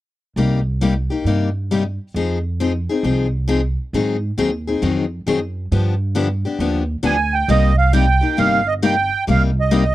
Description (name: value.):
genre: acoustic string swing (jazz manouche).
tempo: 135 BPM.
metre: 4/4.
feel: swing 65% on 8ths.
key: C minor.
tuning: A4 = 439 Hz.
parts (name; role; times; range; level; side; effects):
picked steel-string acoustic guitar; accompaniment; 0.4-9.8 s; C3 to Ab4; -19 LUFS; left 4 dB; none.
upright bass; bass; 0.4-9.9 s; G1 to Ab2; -20 LUFS; right 1 dB; none.
accordion; melody; 7.1-9.9 s; Eb5 to Ab5; -18 LUFS; right 4 dB; light tremolo tuning.
room: little or no reverb.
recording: dry, close 1970s-style studio recording.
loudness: -16 LUFS.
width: side -15 dB against mid.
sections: 0.4-7.5 A section; 7.5-9.9 B section.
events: none.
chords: 0.4 Cm7; 2.1 Fm7; 3.9 Ab7; 5.7 G7; 7.5 Cm7.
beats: | 0.36 0.81 1.25 1.70 | 2.15 2.59 3.04 3.48 | 3.93 4.37 4.82 5.26 | 5.71 6.15 6.60 7.04 | 7.49 7.93 8.38 8.82 | 9.27 9.71.